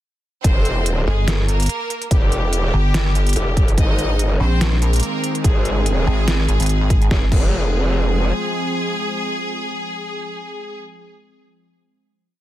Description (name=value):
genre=heavy wobble dubstep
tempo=144 BPM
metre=4/4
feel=swing 54% on 16ths, half-time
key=F minor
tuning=A4 = 440 Hz
part: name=bright studio violin section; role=melody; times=0.4-10.8 s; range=G3 to Eb5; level=-25 LUFS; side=left 1 dB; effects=digital delay
part: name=growl bass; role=bass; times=0.4-8.3 s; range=F1 to Ab1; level=-19 LUFS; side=equal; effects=chorus, overdrive
part: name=dubstep drum kit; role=drums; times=0.4-7.5 s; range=crash cymbal, hi-hat, snare drum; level=-24 LUFS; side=equal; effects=none
part: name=electronic kick drum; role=drums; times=0.4-7.5 s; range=none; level=-16 LUFS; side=equal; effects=none
part: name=pulsing pluck wobble bass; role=bass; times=1.1-7.1 s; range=G1 to Bb1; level=-17 LUFS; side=equal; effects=chorus, overdrive
part: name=lush unison pad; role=sustained chords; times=4.3-10.6 s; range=Eb3 to C4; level=-27 LUFS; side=right 1 dB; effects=chorus, sidechain pumping
room=digital ambience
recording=dense, heavily limited modern master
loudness=-16 LUFS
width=side -14 dB against mid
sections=0.4-7.1 drop; 7.1-10.4 final chord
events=drop 0.4-7.1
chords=0.4 Fm; 3.8 Ab; 7.1 Fm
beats=| 0.44 0.86 1.28 1.69 | 2.11 2.53 2.94 3.36 | 3.78 4.19 4.61 5.03 | 5.44 5.86 6.28 6.69 | 7.11 7.53 7.94 8.36 | 8.78 9.19 9.61 10.03